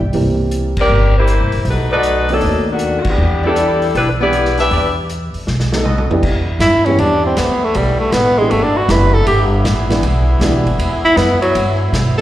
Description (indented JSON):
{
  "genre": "jazz, big band swing",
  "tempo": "158 BPM",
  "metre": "4/4",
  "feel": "swing 66% on 8ths",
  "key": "E minor",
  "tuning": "A4 = 440 Hz",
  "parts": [
    { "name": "upright bass", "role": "bass", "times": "0.0-12.2 s", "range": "F#1 to B2", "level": "-17 LUFS", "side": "equal", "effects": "none" },
    { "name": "warm upright piano", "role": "accompaniment", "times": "0.1-12.2 s", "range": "D#3 to D5", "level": "-20 LUFS", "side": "right 2 dB", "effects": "slapback echo" },
    { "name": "vintage drum kit", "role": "drums", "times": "0.1-12.2 s", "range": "crash cymbal, hi-hat, kick drum, ride cymbal, snare drum, toms", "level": "-23 LUFS", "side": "equal", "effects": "none" },
    { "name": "dark saxophone section", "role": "melody", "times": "0.8-4.9 s", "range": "D#3 to E5", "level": "-16 LUFS", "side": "left 2 dB", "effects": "slapback echo" },
    { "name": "mellow trumpet section", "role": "stabs", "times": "1.9-6.2 s", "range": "D#4 to D#5", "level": "-23 LUFS", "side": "right 1 dB", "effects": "slapback echo" },
    { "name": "muted trombone section", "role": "sustained chords", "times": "6.2-12.2 s", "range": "D3 to E4", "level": "-23 LUFS", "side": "equal", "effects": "none" },
    { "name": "breathy tenor saxophone", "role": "melody", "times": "6.6-12.2 s", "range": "F#3 to B4", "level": "-14 LUFS", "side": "equal", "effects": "slapback echo" }
  ],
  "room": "light reverb, small room ambience",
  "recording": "live gig heard through the venue's PA, recital hall reverb",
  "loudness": "-12 LUFS",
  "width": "side -13 dB against mid",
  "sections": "0.0-6.2 A section; 6.2-12.2 B section",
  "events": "band accent 0.7, 3.0; drum fill 5.5-6.2; tenor saxophone solo 6.2-12.2",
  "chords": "0.1 C7; 1.7 B7#9; 3.2 Em7; 5.5 B7; 6.2 Em7"
}